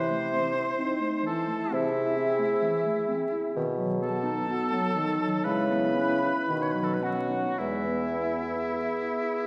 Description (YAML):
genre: classical, slow romantic movement for wind quintet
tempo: 51-67 BPM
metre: 4/4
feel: rubato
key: unclear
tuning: A4 = 440 Hz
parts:
  - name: bright silver concert flute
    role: melody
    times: 0.0-9.5 s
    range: E5 to C6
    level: -37 LUFS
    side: equal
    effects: none
  - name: clear oboe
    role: second line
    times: 0.0-9.5 s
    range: E4 to C#5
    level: -35 LUFS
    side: equal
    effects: none
  - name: mellow French horn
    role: accompaniment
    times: 0.0-9.5 s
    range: B3 to G#4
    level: -33 LUFS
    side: equal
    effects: none
  - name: mellow clarinet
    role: accompaniment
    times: 0.0-9.5 s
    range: D#3 to G#4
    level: -35 LUFS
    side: equal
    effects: none
  - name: warm bassoon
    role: bass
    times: 0.0-8.6 s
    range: E2 to C#3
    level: -34 LUFS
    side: equal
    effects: none
room: wet concert hall reverb, RT60 2.0 s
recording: heard from further back in the room, vinyl crackle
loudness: -28 LUFS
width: mono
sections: 0.0-9.5 A section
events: none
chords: 0.0 Am/C; 3.6 B; 5.5 C#m7; 6.5 B; 7.6 E